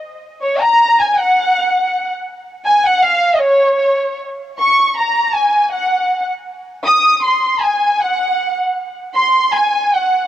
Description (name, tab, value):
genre	mexican folk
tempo	free time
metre	none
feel	none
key	Db major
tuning	A4 = 440 Hz
part	dark studio violin section	solo	0.4-10.3 s	Db5 to Eb6	-12 LUFS	equal	cassette tape, analog delay
room	light reverb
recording	home recording on cassette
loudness	-12 LUFS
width	side -12 dB against mid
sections	0.0-4.6 A section; 4.6-10.3 B section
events	none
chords	none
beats	free time